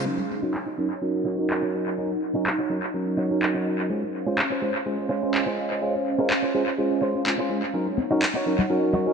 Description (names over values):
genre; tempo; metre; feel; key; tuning
filtered disco house; 125 BPM; 4/4; swing 55% on 16ths; Eb dorian; A4 = 440 Hz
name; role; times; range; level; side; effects
barky tine electric piano; accompaniment; 0.0-9.1 s; Gb3 to C5; -25 LUFS; right 1 dB; overdrive, phaser, vintage 12-bit sampler grit, low-pass filter, analog delay
phased string machine; sustained chords; 0.0-9.1 s; Db4 to Gb5; -30 LUFS; right 1 dB; ensemble chorus, phaser, vintage 12-bit sampler grit, low-pass filter
direct-recorded clean electric guitar; riff; 0.4-9.1 s; Db4 to Db5; -31 LUFS; right 2 dB; low-pass filter, analog delay
electronic handclaps; drums; 0.5-8.3 s; none; -29 LUFS; equal; low-pass filter on hats, low-pass filter on snare, analog delay
tambourine and congas; percussion; 7.7-9.1 s; none; -30 LUFS; left 4 dB; low-pass filter on perc, analog delay
room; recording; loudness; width
moderate plate reverb, RT60 2.1 s; echo-heavy mix; -22 LUFS; side -6 dB against mid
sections
0.1-9.1 A section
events
filter sweep on drum 0.1-9.1; filter sweep 0.1-9.1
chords
0.1 Ebm7; 3.9 Dbmaj7; 7.7 Ebm7